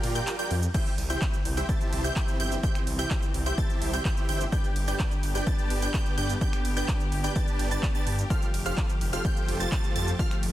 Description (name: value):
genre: EDM, festival progressive house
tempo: 127 BPM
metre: 4/4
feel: straight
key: C major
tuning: A4 = 440 Hz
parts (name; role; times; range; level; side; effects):
- wide unison pluck; arpeggios; 0.0-10.4 s; F6 to A6; -35 LUFS; right 2 dB; phaser, sidechain pumping, dub echo
- dense compressed supersaw; riff; 0.0-10.4 s; D4 to A5; -33 LUFS; right 1 dB; sidechain pumping, dub echo
- wide detuned saw bass; bass; 0.0-10.5 s; F1 to Bb2; -30 LUFS; equal; chorus, sidechain pumping
- big-room dance drum kit; drums; 0.0-10.5 s; cabasa, crash cymbal, finger snaps, handclaps, hi-hat, ride cymbal; -37 LUFS; right 2 dB; overdrive
- muted studio string section; sustained chords; 0.7-10.5 s; D3 to G4; -37 LUFS; equal; sidechain pumping
- electronic kick drum; drums; 0.7-10.3 s; none; -27 LUFS; equal; overdrive
room: little or no reverb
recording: dense, heavily limited modern master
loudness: -25 LUFS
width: side -14 dB against mid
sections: 0.7-10.5 A section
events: kick drops out 0.3-0.7; drop 0.7-10.5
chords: 0.0 Bb6; 0.7 C; 4.5 G; 8.3 Fadd9